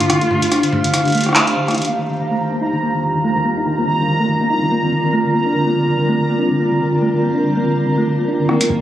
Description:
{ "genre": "IDM", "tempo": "143 BPM", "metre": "4/4", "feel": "swing 56% on 16ths", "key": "Eb lydian", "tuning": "A4 = 440 Hz", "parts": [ { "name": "dark cello", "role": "melody", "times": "0.0-1.3, 8.5-8.8 s", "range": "Bb3 to F4", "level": "-21 LUFS", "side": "equal", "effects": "digital delay" }, { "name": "granular cloud pad", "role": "sustained chords", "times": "0.0-8.8 s", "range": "Eb2 to F5", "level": "-20 LUFS", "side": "equal", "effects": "built-in reverb" }, { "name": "thumb-piano-like synth pluck", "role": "arpeggios", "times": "0.0-8.8 s", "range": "D3 to Eb4", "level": "-19 LUFS", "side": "equal", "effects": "chorus, ping-pong delay" }, { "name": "booming analog drum machine", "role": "drums", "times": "0.0-1.9, 8.5-8.7 s", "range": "handclaps, hi-hat, rim click, toms", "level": "-18 LUFS", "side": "equal", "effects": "none" }, { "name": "bubbling stepped-filter texture", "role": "texture", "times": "0.0-8.5 s", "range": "F5 to Bb5", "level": "-22 LUFS", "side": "right 1 dB", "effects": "chorus, built-in reverb, sidechain pumping" }, { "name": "electronic kick drum", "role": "drums", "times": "8.7-8.8 s", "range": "none", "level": "-21 LUFS", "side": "equal", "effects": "none" } ], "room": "moderate plate reverb, RT60 1.8 s", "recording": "recorded on a phone in the room, club reverb, compression", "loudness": "-14 LUFS", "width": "side -12 dB against mid", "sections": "0.0-1.8 A section; 1.8-8.5 B section", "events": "break 0.1-1.8; band accent 1.4; filter sweep on synth arpeggio sound 1.8-8.5", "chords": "0.0 Dm; 1.8 Eb; 5.1 Gm" }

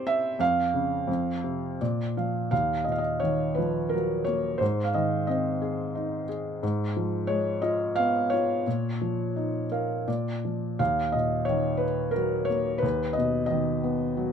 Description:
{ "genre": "classical, lyrical solo piano", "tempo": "87 BPM", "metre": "3/4", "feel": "uneven beats, rubato", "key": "Eb minor", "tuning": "A4 = 440 Hz", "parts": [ { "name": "felt-muted upright piano", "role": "solo", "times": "0.0-14.3 s", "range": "Eb2 to F5", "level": "-25 LUFS", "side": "equal", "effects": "none" } ], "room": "light reverb", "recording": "close, detailed microphones", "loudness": "-25 LUFS", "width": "side -7 dB against mid", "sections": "0.0-2.5 A section; 2.5-14.3 B section", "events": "felt piano fill 1.4-2.5, 9.4-10.8", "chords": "0.4 Db/F; 1.1 F5; 1.8 Bb; 2.5 Ebmadd9; 4.6 Ab; 6.6 Fdim/Ab; 8.7 Bbsus4; 10.1 Bb; 10.8 Ebm; 12.8 B/D#" }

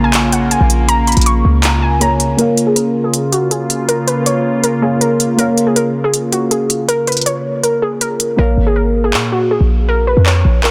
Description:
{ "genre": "hip hop, trap", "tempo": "160 BPM", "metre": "4/4", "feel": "half-time", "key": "Bb minor", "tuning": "A4 = 441 Hz", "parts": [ { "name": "warbly dusty pluck", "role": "melody", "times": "0.0-10.7 s", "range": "Gb4 to Db6", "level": "-19 LUFS", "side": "equal", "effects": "chorus, low-pass filter" }, { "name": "dark concert grand piano", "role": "accompaniment", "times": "0.0-10.7 s", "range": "Bb3 to Ab5", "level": "-23 LUFS", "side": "equal", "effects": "low-pass filter" }, { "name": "sweeping resonant pad", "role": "sustained chords", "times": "0.0-8.3 s", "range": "Db3 to F4", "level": "-21 LUFS", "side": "equal", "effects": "chorus, low-pass filter" }, { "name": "short 808-style bass", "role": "bass", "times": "0.0-2.3, 8.4-10.7 s", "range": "Ab1 to Bb2", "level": "-16 LUFS", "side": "equal", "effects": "none" }, { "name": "trap drum kit", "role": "drums", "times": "0.1-10.7 s", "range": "handclaps, hi-hat", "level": "-19 LUFS", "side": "equal", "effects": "none" } ], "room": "light reverb, digital ambience", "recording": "dense, heavily limited modern master", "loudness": "-14 LUFS", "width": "mono", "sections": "0.0-2.4 A section; 2.4-8.4 B section; 8.4-10.7 C section", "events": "filter sweep 2.4-8.4; hi-hats muted 8.4-10.7", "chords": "0.0 Bbm" }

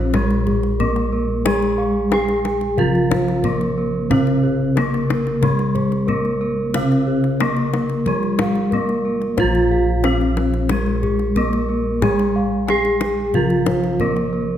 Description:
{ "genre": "Javanese gamelan", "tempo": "91 BPM", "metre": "4/4", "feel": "straight", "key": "unclear", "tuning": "A4 = 440 Hz", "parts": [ { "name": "gamelan-type bronze metallophone", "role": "melody", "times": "0.0-14.6 s", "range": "Ab3-40c to Ab4-40c", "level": "-21 LUFS", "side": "equal", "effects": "none" }, { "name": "gamelan-type bronze metallophone", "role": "accompaniment", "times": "0.0-14.6 s", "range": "C3+40c to Ab3-40c", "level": "-24 LUFS", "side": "equal", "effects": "none" }, { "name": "gamelan-type bronze metallophone", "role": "arpeggios", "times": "0.0-14.6 s", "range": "Ab4-40c to Ab5-40c", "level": "-27 LUFS", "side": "right 4 dB", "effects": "none" }, { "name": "gamelan-type bossed gongs", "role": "bass", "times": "0.0-14.6 s", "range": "Bb1 to Ab4-40c", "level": "-22 LUFS", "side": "right 1 dB", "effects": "none" }, { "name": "gamelan-type bossed gongs", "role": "arpeggios", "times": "0.1-14.4 s", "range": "Ab4-40c to Ab5-40c", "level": "-28 LUFS", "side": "left 4 dB", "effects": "none" }, { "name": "kendang", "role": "percussion", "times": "0.1-14.2 s", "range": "none", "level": "-26 LUFS", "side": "left 4 dB", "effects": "none" } ], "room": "light reverb", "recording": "none", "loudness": "-16 LUFS", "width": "side -10 dB against mid", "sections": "0.0-14.6 A section", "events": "none", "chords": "none" }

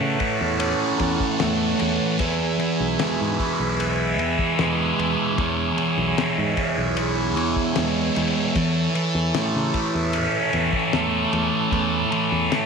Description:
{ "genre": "psychedelic rock", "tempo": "76 BPM", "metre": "4/4", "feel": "straight", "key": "E major", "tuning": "A4 = 440 Hz", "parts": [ { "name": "combo organ", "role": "sustained chords", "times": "0.0-12.7 s", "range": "G#4 to F#5", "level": "-29 LUFS", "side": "right 7 dB", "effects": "none" }, { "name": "thick fuzz guitar", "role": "riff", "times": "0.0-12.7 s", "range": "E2 to E4", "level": "-21 LUFS", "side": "equal", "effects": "distortion, phaser" }, { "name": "fingered electric bass", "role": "bass", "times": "0.0-12.5 s", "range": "B1 to C#3", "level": "-28 LUFS", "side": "equal", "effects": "none" }, { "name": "cloth-damped thuddy drum kit", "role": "drums", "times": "0.2-12.7 s", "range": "kick drum, ride cymbal, snare drum", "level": "-30 LUFS", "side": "left 4 dB", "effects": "none" } ], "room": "moderate echo chamber reverb, RT60 1.6 s, studio reverb", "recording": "1960s-style stereo", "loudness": "-20 LUFS", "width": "side -5 dB against mid", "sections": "0.0-12.7 A section", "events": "none", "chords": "0.0 A/E; 2.2 E; 8.6 A/E" }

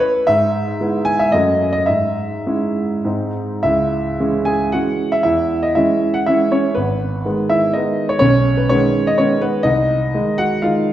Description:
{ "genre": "classical, romantic triple-time dance for piano with dotted rhythms", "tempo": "98-130 BPM", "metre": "3/4", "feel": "rubato", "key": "C# minor", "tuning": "A4 = 440 Hz", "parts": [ { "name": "warm grand piano", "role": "solo", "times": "0.0-10.9 s", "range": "G#1 to G#5", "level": "-15 LUFS", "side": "equal", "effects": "none" } ], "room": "wet recital hall reverb, RT60 1.5 s", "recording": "heard from further back in the room", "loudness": "-15 LUFS", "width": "side -12 dB against mid", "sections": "0.0-3.6 A section; 3.6-10.9 A section", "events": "none", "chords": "0.3 E/G#; 1.3 F#m; 1.9 C#m/G#; 3.0 G#; 3.6 C#m; 5.2 C#m/E; 6.8 G#m; 8.2 G#m/B; 9.7 Ab/C" }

